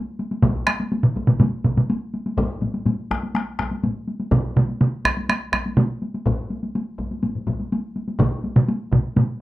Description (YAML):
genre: japanese traditional, taiko drum ensemble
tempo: 124 BPM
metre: 4/4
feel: straight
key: none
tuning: none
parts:
  - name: solo taiko drums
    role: percussion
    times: 0.2-9.3 s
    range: none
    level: -26 LUFS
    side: left 1 dB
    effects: none
  - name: solo taiko drums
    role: percussion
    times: 0.4-9.3 s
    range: none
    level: -19 LUFS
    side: right 2 dB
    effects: none
  - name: taiko ensemble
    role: percussion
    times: 0.4-9.3 s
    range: none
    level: -24 LUFS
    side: left 2 dB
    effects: none
  - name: taiko ensemble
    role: percussion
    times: 0.4-9.0 s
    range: none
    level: -28 LUFS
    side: equal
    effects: none
room: wet small room reverb, RT60 0.5 s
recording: rough home demo mix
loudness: -20 LUFS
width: side -16 dB against mid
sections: 0.0-9.4 A section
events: none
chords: none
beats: | 0.43 0.91 1.40 1.89 | 2.38 2.86 3.35 3.84 | 4.32 4.81 5.29 5.78 | 6.26 6.75 7.23 7.72 | 8.20 8.69 9.17